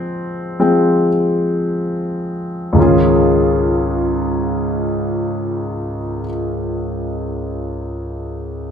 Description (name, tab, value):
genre	pop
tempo	free time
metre	none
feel	none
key	Db major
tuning	A4 = 440 Hz
part	clear concert grand piano	accompaniment	0.0-8.7 s	Db2 to Ab4	-16 LUFS	left 1 dB	none
room	wet large studio reverb, RT60 1.3 s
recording	band playing live in one room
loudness	-16 LUFS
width	side -8 dB against mid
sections	0.0-2.8 A section; 2.8-7.1 B section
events	slowing down 0.0-2.8; grand piano solo 0.0-2.8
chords	0.0 Fm; 2.8 Dbadd9